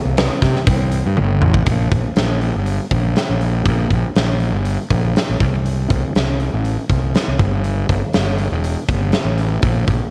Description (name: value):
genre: blues rock power trio and southern rock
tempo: 120 BPM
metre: 4/4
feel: straight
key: unclear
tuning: A4 = 438 Hz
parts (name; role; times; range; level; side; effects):
- fuzz fingered electric bass; bass; 0.1-10.0 s; E1 to C3; -20 LUFS; equal; overdrive
- big rock drum kit; drums; 0.2-10.0 s; hi-hat, kick drum, snare drum, toms; -21 LUFS; equal; none
room: light reverb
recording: none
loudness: -18 LUFS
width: mono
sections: 0.0-1.7 A section; 1.7-10.1 B section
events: drum fill 1.2-1.7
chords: none